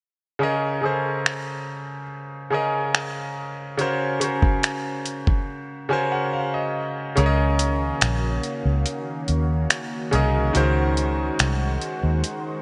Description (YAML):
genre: contemporary R&B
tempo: 71 BPM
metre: 4/4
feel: straight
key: unclear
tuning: A4 = 445 Hz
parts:
  - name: bright concert grand piano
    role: accompaniment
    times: 0.4-12.6 s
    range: Db3 to Ab5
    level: -27 LUFS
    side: equal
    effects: none
  - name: dusty soul sampler-style drum kit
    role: drums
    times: 1.3-12.4 s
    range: finger snaps, hi-hat, kick drum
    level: -26 LUFS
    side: equal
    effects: overdrive
  - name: lush unison pad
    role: sustained chords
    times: 7.8-12.6 s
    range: Eb3 to C5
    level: -33 LUFS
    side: equal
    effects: chorus, phaser
  - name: vintage muted fingered electric bass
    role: bass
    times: 7.2-12.2 s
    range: Bb1 to Eb2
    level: -24 LUFS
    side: equal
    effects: none
room: moderate lush hall reverb, RT60 2.5 s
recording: bright 1980s-style digital production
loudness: -23 LUFS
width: mono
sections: 0.4-7.2 A section; 7.2-12.6 B section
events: break 5.5-7.2; grand piano fill 5.5-7.2; kick muted 7.2-12.6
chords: 0.4 Bbm11/Db; 3.8 Ebm13/Db; 7.2 Gb6; 10.5 Ab7